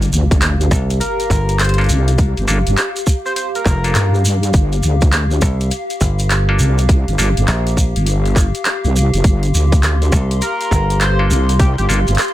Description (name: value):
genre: glitch hop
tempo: 102 BPM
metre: 4/4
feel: swing 64% on 16ths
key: G minor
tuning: A4 = 440 Hz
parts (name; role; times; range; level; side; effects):
- warbly tape-like pad; sustained chords; 0.2-12.3 s; G4 to C6; -24 LUFS; left 1 dB; chorus, built-in reverb, vintage 12-bit sampler grit, sidechain pumping
- wobble bass; bass; 0.0-12.2 s; F1 to G2; -14 LUFS; equal; chorus
- drum and bass drum kit; drums; 0.0-12.3 s; handclaps, hi-hat, snare drum; -21 LUFS; equal; overdrive
- shekere; percussion; 0.0-12.3 s; none; -26 LUFS; right 1 dB; none
- impact; sound effects; 0.0-2.2 s; none; -27 LUFS; equal; none
- electronic kick drum; drums; 0.3-11.7 s; none; -13 LUFS; equal; overdrive
- dry thumbed slap bass; bass; 0.7-11.3 s; F1 to C2; -16 LUFS; equal; none
- sync lead; melody; 1.0-4.1, 10.4-11.9 s; G4 to C5; -24 LUFS; left 1 dB; chorus, dub echo
- bright clav; stabs; 1.8-7.3, 11.2-12.0 s; Bb3 to A4; -25 LUFS; equal; sidechain pumping, dub echo
room: digital ambience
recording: none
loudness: -13 LUFS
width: side -14 dB against mid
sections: 0.0-12.3 A section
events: impact 0.0-2.2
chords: 0.0 Gm7